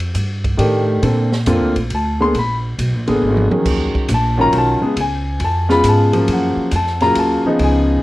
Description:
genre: jazz, small-group swing and bop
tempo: 137 BPM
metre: 3/4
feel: swing 67% on 8ths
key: F# major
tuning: A4 = 438 Hz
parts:
  - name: upright bass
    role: bass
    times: 0.0-8.0 s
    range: G#1 to A#2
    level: -18 LUFS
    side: equal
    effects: none
  - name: open jazz drum kit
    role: drums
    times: 0.0-7.7 s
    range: crash cymbal, hi-hat, kick drum, ride cymbal, snare drum, toms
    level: -26 LUFS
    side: right 1 dB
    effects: none
  - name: warm grand piano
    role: accompaniment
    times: 0.6-8.0 s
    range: C#3 to B#5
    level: -15 LUFS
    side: left 1 dB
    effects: none
room: light reverb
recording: worn, warbling old tape, cassette tape, warbly pitch drift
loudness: -14 LUFS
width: side -17 dB against mid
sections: 0.0-8.0 A section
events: drum fill 3.2-3.7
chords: 0.0 F13; 1.0 A#maj9; 2.3 A#7b9; 3.7 D#m9; 5.0 C#7; 6.3 F#maj7

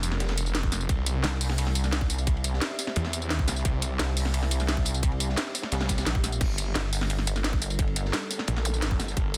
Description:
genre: dark technical drum and bass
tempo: 174 BPM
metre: 4/4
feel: straight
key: unclear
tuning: A4 = 440 Hz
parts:
  - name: deep dark ambient pad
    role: sustained chords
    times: 0.0-9.4 s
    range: G3 to E5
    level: -42 LUFS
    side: equal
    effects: chorus, built-in reverb, sidechain pumping
  - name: snarling distorted saw bass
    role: bass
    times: 0.0-4.0, 6.4-9.4 s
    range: F1 to E2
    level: -31 LUFS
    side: equal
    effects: distortion, overdrive
  - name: crunchy breakbeat drum kit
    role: drums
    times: 0.0-9.4 s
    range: hi-hat, ride cymbal, snare drum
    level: -41 LUFS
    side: equal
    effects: high-pass filter on cymbals, high-pass filter on hats, high-pass filter on snare, high-pass filter on room
  - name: drum and bass drum kit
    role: drums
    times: 0.0-9.4 s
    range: crash cymbal, hi-hat, snare drum, tambourine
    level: -33 LUFS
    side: equal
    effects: none
  - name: electronic kick drum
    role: drums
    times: 0.6-9.2 s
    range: none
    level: -29 LUFS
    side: equal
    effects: none
  - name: pulsing pluck wobble bass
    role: bass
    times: 1.2-9.2 s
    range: G1 to C2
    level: -30 LUFS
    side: equal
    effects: chorus
  - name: swell and zap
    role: sound effects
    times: 5.9-6.4, 8.7 s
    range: none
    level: -43 LUFS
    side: equal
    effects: none
room: digital ambience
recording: dense, heavily limited modern master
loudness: -27 LUFS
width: mono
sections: 0.0-9.4 A section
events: none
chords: 0.0 Gm; 0.9 Cadd9; 6.4 Gm

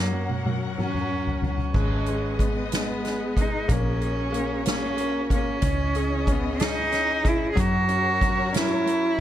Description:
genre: six-eight pop ballad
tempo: 62 BPM (dotted quarters)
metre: 6/8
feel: straight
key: unclear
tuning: A4 = 443 Hz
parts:
  - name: warm cello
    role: melody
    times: 0.0-9.2 s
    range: A#3 to G#4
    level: -26 LUFS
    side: right 2 dB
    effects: digital delay
  - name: clear concert grand piano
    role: accompaniment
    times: 0.0-9.2 s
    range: F#3 to G#4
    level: -31 LUFS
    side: left 4 dB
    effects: none
  - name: warm studio string section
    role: sustained chords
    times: 0.0-9.2 s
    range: C#3 to F#5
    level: -34 LUFS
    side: left 2 dB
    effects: none
  - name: vintage muted fingered electric bass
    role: bass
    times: 0.0-9.2 s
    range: G#1 to F#2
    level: -29 LUFS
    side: equal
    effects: none
  - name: soft-mallet drum kit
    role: drums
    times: 0.3-9.0 s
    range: crash cymbal, hi-hat, kick drum, snare drum, toms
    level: -26 LUFS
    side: equal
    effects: none
room: studio ambience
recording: none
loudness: -22 LUFS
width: side -11 dB against mid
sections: 0.0-1.8 A section; 1.8-9.2 B section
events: drum fill 0.0-1.8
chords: 0.0 F#; 1.8 G#m; 3.7 F#add9/A#; 5.6 C#madd9; 7.6 F#

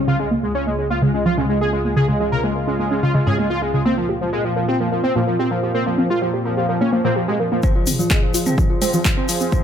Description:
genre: melodic techno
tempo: 127 BPM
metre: 4/4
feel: straight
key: F minor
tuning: A4 = 438 Hz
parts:
  - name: sweeping resonant pad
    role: sustained chords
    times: 0.0-9.6 s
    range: Db2 to C5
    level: -25 LUFS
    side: equal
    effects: chorus, sidechain pumping
  - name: warbly dusty pluck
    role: arpeggios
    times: 0.0-9.6 s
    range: Ab2 to Bb4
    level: -22 LUFS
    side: equal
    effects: chorus, sidechain pumping, dub echo
  - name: synth brass stab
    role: stabs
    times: 0.0-9.0 s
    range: Bb2 to F4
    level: -26 LUFS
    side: right 1 dB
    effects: chorus, sidechain pumping, dub echo
  - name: fat analog lead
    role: melody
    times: 0.1-9.6 s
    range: F3 to Bb4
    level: -21 LUFS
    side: equal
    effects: analog chorus, sidechain pumping, ping-pong delay
  - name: dark detuned synth bell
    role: second line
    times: 7.6-9.6 s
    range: F4 to C5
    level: -28 LUFS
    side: right 1 dB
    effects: chorus, sidechain pumping, low-pass filter, dub echo
  - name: electronic kick drum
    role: drums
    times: 7.6-9.6 s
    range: none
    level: -18 LUFS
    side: equal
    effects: none
  - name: tube shaker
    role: percussion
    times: 7.6-9.6 s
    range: none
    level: -28 LUFS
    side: left 5 dB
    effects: none
  - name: round analog bass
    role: bass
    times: 7.9-9.5 s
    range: none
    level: barely audible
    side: none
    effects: none
  - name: deep house drum kit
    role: drums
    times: 7.9-9.4 s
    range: handclaps, hi-hat, toms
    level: -23 LUFS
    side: equal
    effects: none
room: light reverb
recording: none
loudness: -16 LUFS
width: side -8 dB against mid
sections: 0.0-7.6 A section; 7.6-9.6 B section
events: filter sweep on synth stab 0.0-7.6; filter sweep on analog synth pad 0.0-7.6; build-up 7.6-9.6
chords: 0.1 Db; 3.9 Bbsus2; 7.6 Fm

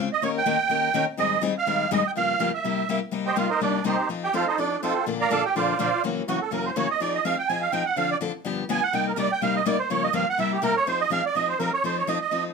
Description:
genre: jazz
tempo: 248 BPM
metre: 4/4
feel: swing 56% on 8ths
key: C minor from 3.1 s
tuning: A4 = 438 Hz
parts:
  - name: picked steel-string acoustic guitar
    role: accompaniment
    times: 0.0-12.5 s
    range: F#2 to Bb4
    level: -27 LUFS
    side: left 6 dB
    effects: none
  - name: musette accordion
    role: melody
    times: 0.1-12.4 s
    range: C4 to Bb5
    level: -23 LUFS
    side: right 6 dB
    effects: none
room: moderate studio reverb, RT60 0.5 s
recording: none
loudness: -22 LUFS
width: side -4 dB against mid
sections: 0.0-3.1 A section; 3.1-10.9 B section; 10.9-12.5 B section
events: accordion solo 3.1-12.5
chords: 0.2 Eb7; 1.2 Abmaj7; 2.2 Gm7b5; 2.6 C7; 3.1 Cm7; 4.1 F7; 5.1 Bbmaj9; 6.0 F#7; 7.0 Fm7; 8.0 Dm7; 8.4 G7; 8.9 Cm7; 9.9 Gm7b5; 10.4 C7; 10.9 Fm7; 11.8 F7

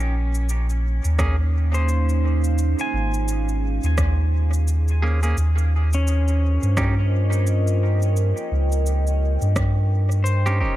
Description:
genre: ambient dub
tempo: 86 BPM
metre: 4/4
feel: swing 59% on 16ths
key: Bb dorian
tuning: A4 = 440 Hz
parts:
  - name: deep dark ambient pad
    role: sustained chords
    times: 0.0-10.8 s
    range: Bb3 to G5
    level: -29 LUFS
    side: right 2 dB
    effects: chorus, built-in reverb
  - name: pedal steel guitar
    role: arpeggios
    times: 0.0-10.8 s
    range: Db4 to Ab5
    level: -31 LUFS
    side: left 1 dB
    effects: dub echo
  - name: soft dub sub bass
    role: bass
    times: 0.0-10.8 s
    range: Eb1 to G2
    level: -19 LUFS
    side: equal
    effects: none
  - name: electronic cabasa and rim click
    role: drums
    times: 0.0-10.6 s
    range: none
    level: -33 LUFS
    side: right 1 dB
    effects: overdrive, dub echo
  - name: semi-hollow electric guitar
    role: stabs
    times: 1.2-10.8 s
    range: Bb3 to Ab4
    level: -32 LUFS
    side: right 2 dB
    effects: spring reverb, dub echo
  - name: electronic kick drum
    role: drums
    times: 1.2-9.7 s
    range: none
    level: -25 LUFS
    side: equal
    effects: none
room: little or no reverb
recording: none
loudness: -18 LUFS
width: side -14 dB against mid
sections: 0.0-10.8 A section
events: none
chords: 0.0 Bbm7; 5.4 Eb7

